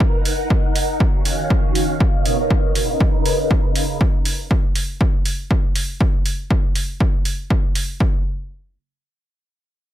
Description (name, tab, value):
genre	filtered disco house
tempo	120 BPM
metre	4/4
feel	swing 54% on 16ths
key	unclear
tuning	A4 = 440 Hz
part	phased string machine	sustained chords	0.0-4.0 s	B2 to F#5	-22 LUFS	right 1 dB	ensemble chorus, phaser, sidechain pumping, low-pass filter
part	electronic kick drum	drums	0.0-8.1 s	none	-18 LUFS	equal	overdrive
part	electronic hi-hat	drums	0.3-7.9 s	none	-26 LUFS	right 2 dB	overdrive, sidechain pumping on hats
room	digital ambience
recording	none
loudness	-16 LUFS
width	side -12 dB against mid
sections	0.0-8.0 A section; 8.0-9.9 B section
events	none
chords	0.0 F#6; 1.0 D#m9; 2.0 Bmaj9#11; 2.8 C#13; 4.0 N.C.